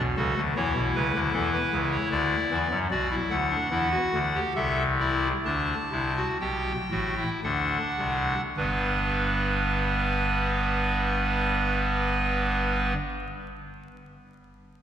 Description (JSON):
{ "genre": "classical, baroque-style 3-part fugue for pipe organ", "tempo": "50-78 BPM", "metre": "3/4", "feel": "straight", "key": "G major", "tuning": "A4 = 440 Hz", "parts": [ { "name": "chamber organ, clarinet reed", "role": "solo", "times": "0.0-12.9 s", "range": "G1 to A5", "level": "-24 LUFS", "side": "equal", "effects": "none" } ], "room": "wet church reverb, RT60 3.7 s", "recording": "minimal, uncompressed stereo recording, vinyl crackle", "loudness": "-24 LUFS", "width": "side -9 dB against mid", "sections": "0.0-8.6 A section; 8.6-12.2 B section", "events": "slowing down 1.7-8.6", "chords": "0.0 D; 0.6 Bmadd9; 2.1 D; 2.9 Bm; 4.6 Am/C; 5.5 D7sus4; 7.4 D7; 8.6 G" }